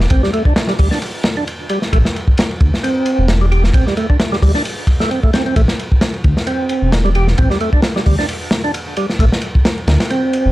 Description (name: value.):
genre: breakbeat, breaks.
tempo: 132 BPM.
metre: 4/4.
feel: swing 55% on 16ths.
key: A minor.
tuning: A4 = 441 Hz.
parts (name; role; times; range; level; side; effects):
dark detuned saw bass; bass; 0.0-10.5 s; E1 to D2; -14 LUFS; equal; none.
crunchy breakbeat drum kit; drums; 0.0-10.5 s; hi-hat, kick drum, ride cymbal, snare drum; -15 LUFS; equal; none.
percussive tonewheel organ; riff; 0.1-10.5 s; G3 to G4; -19 LUFS; right 1 dB; chorus vibrato, slow rotary speaker, tube saturation, vintage 12-bit sampler grit, tape echo.
room: light reverb.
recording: dark, warm production.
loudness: -13 LUFS.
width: side -17 dB against mid.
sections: 0.0-10.5 A section.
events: none.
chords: 0.0 Am.